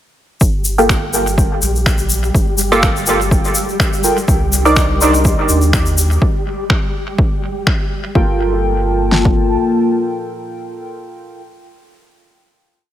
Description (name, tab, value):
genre	dub techno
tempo	124 BPM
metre	4/4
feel	swing 55% on 16ths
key	G minor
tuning	A4 = 440 Hz
part	pure sine sub bass	bass	0.4-9.6 s	G1 to Eb2	-18 LUFS	equal	sidechain pumping
part	deep house drum kit	drums	0.4-9.4 s	kick drum, snare drum	-16 LUFS	equal	overdrive
part	egg shaker	percussion	0.4-6.2 s	none	-20 LUFS	left 3 dB	none
part	flickering grainy texture	texture	0.6-8.2 s	G3 to G4	-25 LUFS	equal	built-in reverb, sidechain pumping
part	filtered dub chord stab	stabs	0.8-4.8, 8.2-11.4 s	Bb3 to D5	-17 LUFS	right 1 dB	chorus, phaser, sidechain pumping, dub echo
part	electronic finger snaps	drums	0.9-7.8 s	none	-22 LUFS	equal	overdrive, dub echo
part	warbly lo-fi synth keys	riff	1.1-5.1, 8.2-11.4 s	F4 to C6	-22 LUFS	right 2 dB	chorus, sidechain pumping, dub echo
part	dark analog pad	sustained chords	4.6-11.4 s	Bb3 to A5	-19 LUFS	left 2 dB	chorus, sidechain pumping
room	light reverb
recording	none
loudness	-12 LUFS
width	side -12 dB against mid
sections	0.4-8.2 groove; 8.2-12.0 final chord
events	none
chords	0.4 Gm9; 4.3 Cm9; 8.2 Gm9